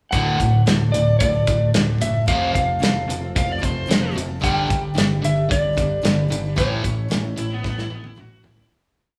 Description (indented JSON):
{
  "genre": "classic rock",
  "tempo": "112 BPM",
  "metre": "4/4",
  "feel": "straight",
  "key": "unclear",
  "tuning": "A4 = 445 Hz",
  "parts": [
    { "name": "electric slide guitar", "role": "melody", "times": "0.1-8.1 s", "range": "C#5 to G5", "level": "-26 LUFS", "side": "equal", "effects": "none" },
    { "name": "picked steel-string acoustic guitar", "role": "accompaniment", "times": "0.1-8.7 s", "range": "A2 to C#5", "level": "-35 LUFS", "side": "equal", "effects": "none" },
    { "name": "distorted electric guitar", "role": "riff", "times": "0.1-8.7 s", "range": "D2 to A3", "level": "-29 LUFS", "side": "equal", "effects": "overdrive" },
    { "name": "overdriven electric guitar", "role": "riff", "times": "0.1-8.7 s", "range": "D2 to A3", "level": "-28 LUFS", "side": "equal", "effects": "none" },
    { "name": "modern bright fingered electric bass", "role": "bass", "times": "0.1-8.7 s", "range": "D1 to A1", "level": "-27 LUFS", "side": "equal", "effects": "none" },
    { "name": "damped 70s drum kit", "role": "drums", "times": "0.1-8.7 s", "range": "hi-hat, kick drum, snare drum, toms", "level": "-24 LUFS", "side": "equal", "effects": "none" },
    { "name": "bluesy overdriven lead guitar", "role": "second line", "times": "3.4-4.2, 7.4-8.7 s", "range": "B3 to F5", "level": "-31 LUFS", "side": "equal", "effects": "distortion" }
  ],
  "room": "moderate large studio reverb, RT60 1.2 s",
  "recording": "band playing live in one room, studio ambience",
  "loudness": "-20 LUFS",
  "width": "mono",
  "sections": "0.1-8.7 verse",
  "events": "fade-out 6.6-8.7; drum fill 7.6-8.7",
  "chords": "0.1 D; 2.3 F; 4.4 G; 6.6 A"
}